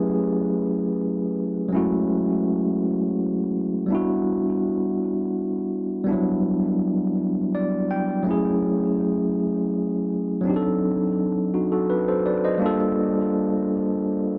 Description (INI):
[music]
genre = R&B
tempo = 55 BPM (dotted quarters)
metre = 6/8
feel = straight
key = unclear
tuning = A4 = 438 Hz
[part]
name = tine electric piano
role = solo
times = 0.0-14.4 s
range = F#3 to G5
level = -23 LUFS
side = equal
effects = analog delay
[sound]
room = light reverb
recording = dry, gritty hardware recording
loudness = -23 LUFS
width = mono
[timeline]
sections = 0.0-12.6 A section; 12.6-14.4 B section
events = tine electric piano fill 7.2-8.3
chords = 0.0 F#m9; 3.9 Em9; 8.3 F#m9; 10.4 D7b9; 12.6 Gm9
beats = 0.62 | 1.71 2.80 | 3.89 4.98 | 6.07 7.16 | 8.26 9.35 | 10.44 11.53 | 12.62 13.71